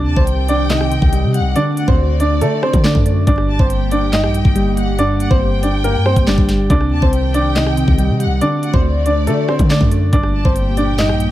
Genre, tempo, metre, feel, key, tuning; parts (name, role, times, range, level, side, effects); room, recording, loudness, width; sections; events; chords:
hip hop, drill; 140 BPM; 4/4; half-time; G harmonic minor; A4 = 440 Hz
clear upright piano; melody; 0.0-11.3 s; A3 to Eb5; -19 LUFS; right 1 dB; low-pass filter, tape echo
soft electric-piano-like synth keys; accompaniment; 0.0-11.3 s; G2 to A3; -21 LUFS; equal; chorus, low-pass filter
hollow soft pad; sustained chords; 0.0-11.3 s; Bb2 to G4; -25 LUFS; equal; ensemble chorus
hard-hitting 808-style bass; bass; 0.0-11.3 s; G1 to D3; -18 LUFS; equal
warm studio violin section; second line; 0.1-11.3 s; D5 to A5; -26 LUFS; left 2 dB; tape echo
drill drum kit; drums; 0.2-11.3 s; handclaps, hi-hat, kick drum, rim click, snare drum; -17 LUFS; equal
little or no reverb; vinyl crackle; -12 LUFS; side -14 dB against mid
0.0-11.3 A section
0.0 Cm; 1.6 D; 3.3 Gm; 6.7 Cm; 8.4 D; 10.1 Gm